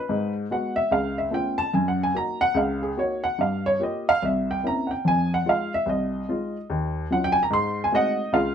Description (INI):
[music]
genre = solo jazz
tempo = 146 BPM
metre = 4/4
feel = swing 64% on 8ths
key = unclear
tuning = A4 = 439 Hz
[part]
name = dark upright piano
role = solo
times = 0.0-8.5 s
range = C2 to C6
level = -22 LUFS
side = equal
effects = none
[sound]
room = moderate small room reverb, RT60 0.5 s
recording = band playing live in one room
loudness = -22 LUFS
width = side -8 dB against mid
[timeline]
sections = 0.0-8.3 A section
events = upright piano solo 0.0-8.3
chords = 0.1 Abm7; 0.9 Dbaug7; 1.7 Gb6; 3.4 Gm7b5; 4.2 C7b9; 5.0 Fm7; 6.7 Ebm9; 7.5 Ab7b9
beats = | 0.09 0.51 0.92 1.33 | 1.74 2.15 2.56 2.97 | 3.39 3.80 4.21 4.62 | 5.03 5.44 5.86 6.27 | 6.68 7.09 7.50 7.91 | 8.32